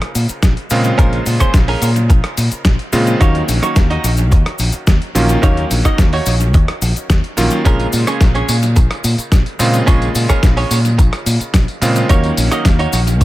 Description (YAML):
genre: nu-disco, nu disco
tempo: 108 BPM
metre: 4/4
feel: straight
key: Bb minor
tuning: A4 = 440 Hz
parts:
  - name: bright electric grand piano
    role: accompaniment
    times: 0.0-13.2 s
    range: Db3 to F5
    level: -20 LUFS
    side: right 1 dB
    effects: dub echo
  - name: direct-recorded clean electric guitar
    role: riff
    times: 0.0-13.2 s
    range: Db4 to Eb5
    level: -21 LUFS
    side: right 3 dB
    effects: lush chorus, dub echo
  - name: dusty soul sampler-style drum kit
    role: drums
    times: 0.0-13.2 s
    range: hi-hat, rim click, snare drum, tambourine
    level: -21 LUFS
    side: left 1 dB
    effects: dub echo
  - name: fingered electric bass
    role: bass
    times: 0.2-13.2 s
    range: Bb1 to Bb2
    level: -16 LUFS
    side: equal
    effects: none
  - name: cabasa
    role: percussion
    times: 0.2-13.2 s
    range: none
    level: -27 LUFS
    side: left 5 dB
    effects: none
  - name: electronic kick drum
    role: drums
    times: 0.4-13.2 s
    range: none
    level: -12 LUFS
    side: equal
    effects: none
room: digital ambience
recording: echo-heavy mix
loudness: -11 LUFS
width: side -16 dB against mid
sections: 0.0-13.2 A section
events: none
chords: 0.0 Bbm7; 3.2 Ebm7; 7.7 Bbm7; 12.1 Ebm7